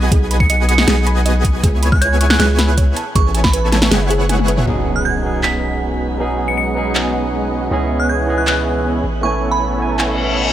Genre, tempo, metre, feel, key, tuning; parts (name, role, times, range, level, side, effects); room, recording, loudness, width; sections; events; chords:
future bass; 158 BPM; 4/4; half-time; B mixolydian; A4 = 440 Hz
dense compressed supersaw; riff; 0.0-10.5 s; B3 to G#5; -22 LUFS; equal; sidechain pumping, low-pass filter
long sustained 808-style bass; bass; 0.0-10.5 s; F#1 to C#2; -18 LUFS; equal; sidechain pumping
thumb-piano-like synth pluck; arpeggios; 0.1-4.5 s; G#4 to D#6; -25 LUFS; right 2 dB; chorus, sidechain pumping, tape echo
dubstep drum kit; drums; 0.1-10.1 s; handclaps, hi-hat, snare drum, toms; -19 LUFS; left 1 dB
electronic kick drum; drums; 0.1-3.5 s; -15 LUFS; equal
glassy synth bell; melody; 0.4-10.0 s; B5 to C#7; -22 LUFS; right 3 dB; chorus, phaser, sidechain pumping, dub echo
barky tine electric piano; accompaniment; 4.7-10.5 s; E3 to G#5; -21 LUFS; right 3 dB; sidechain pumping, tape echo
shimmering ambient pad; sustained chords; 6.4-10.5 s; G#3 to D#4; -29 LUFS; right 2 dB
impact and reverse cymbal; sound effects; 4.7-6.2, 10.1-10.5 s; -23 LUFS; left 2 dB
light reverb; -13 LUFS; side -12 dB against mid
0.0-4.7 A section; 4.7-10.5 B section
drop 0.0-4.7; kick drops out 4.3-4.7; drum fill 4.3-4.7; impact 4.7-6.2; reverse cymbal 10.1-10.5
0.0 B6; 1.6 C#m7; 3.0 Amaj9; 3.9 F#9sus4; 4.7 B6; 7.7 C#m7; 9.0 Amaj9